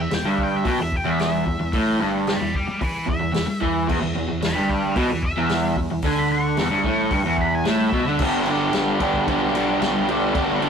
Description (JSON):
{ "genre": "garage rock duo or trio", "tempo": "112 BPM", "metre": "4/4", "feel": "straight", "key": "unclear", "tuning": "A4 = 439 Hz", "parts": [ { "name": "octave-fuzz lead guitar", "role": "melody", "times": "0.0-8.2 s", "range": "B4 to C#6", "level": "-27 LUFS", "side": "equal", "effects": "distortion" }, { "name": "crunchy overdriven guitar", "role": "riff", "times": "0.0-10.7 s", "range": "E2 to G4", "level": "-20 LUFS", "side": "right 1 dB", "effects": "none" }, { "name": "fingered electric bass", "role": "bass", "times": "0.0-10.7 s", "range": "E1 to E2", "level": "-33 LUFS", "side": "equal", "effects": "none" }, { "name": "vintage drum kit", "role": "drums", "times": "0.1-10.7 s", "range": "crash cymbal, hi-hat, kick drum, ride cymbal, snare drum", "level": "-27 LUFS", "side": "left 1 dB", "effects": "none" } ], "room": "moderate stone room reverb, RT60 1.0 s", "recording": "rough rehearsal-room recording, warm saturation", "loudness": "-19 LUFS", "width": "side -7 dB against mid", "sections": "0.0-8.2 A section; 8.2-10.7 B section", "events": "lead electric guitar solo 0.0-8.2", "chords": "0.0 E5; 8.2 G" }